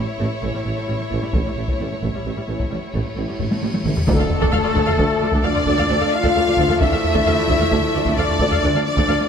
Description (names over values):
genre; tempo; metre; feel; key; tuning
cinematic, epic orchestral film score; 88 BPM (dotted quarters); 12/8; straight; D harmonic minor; A4 = 440 Hz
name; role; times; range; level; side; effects
warm symphonic violin section; melody; 0.0-9.3 s; A4 to F5; -26 LUFS; left 4 dB; none
rich chamber violin section; second line; 0.0-9.3 s; E4 to F5; -29 LUFS; left 5 dB; none
rich studio viola section; accompaniment; 0.0-9.3 s; G3 to F5; -27 LUFS; right 1 dB; none
rich symphonic double bass section; bass; 0.0-9.1 s; A1 to D2; -28 LUFS; right 2 dB; none
warm tuba; bass; 0.0-9.1 s; A1 to D2; -29 LUFS; right 4 dB; none
rich symphonic cello section; bass; 0.2-9.3 s; D2 to A2; -26 LUFS; right 2 dB; none
clear trombone section; sustained chords; 0.4-9.3 s; A2 to A3; -30 LUFS; right 4 dB; none
warm French horn section; sustained chords; 0.4-9.3 s; A3 to F4; -24 LUFS; left 4 dB; none
taiko ensemble; drums; 1.3-9.3 s; none; -22 LUFS; equal; none
cymbal swell and impact; sound effects; 3.0-6.8 s; none; -33 LUFS; equal; none
mellow hollow silver concert flute; second line; 4.1-9.3 s; A4 to F5; -29 LUFS; left 1 dB; none
rich symphonic string section; sustained chords; 4.1-9.3 s; F3 to D5; -30 LUFS; left 2 dB; none
dark trumpet section; stabs; 4.1-9.3 s; A4 to F5; -25 LUFS; equal; none
timpani; percussion; 4.1-4.7 s; D3; -26 LUFS; left 1 dB; none
room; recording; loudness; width
moderate scoring stage reverb, RT60 1.5 s; none; -17 LUFS; side -7 dB against mid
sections
0.0-4.1 A section; 4.1-9.3 B section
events
cymbal swell 3.0-4.1; drum fill 3.4-4.1; impact 4.1-6.8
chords
0.0 A; 4.1 Dm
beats
0.66 | 1.34 2.03 2.71 3.40 | 4.08 4.76 5.45 6.13 | 6.81 7.49 8.18 8.86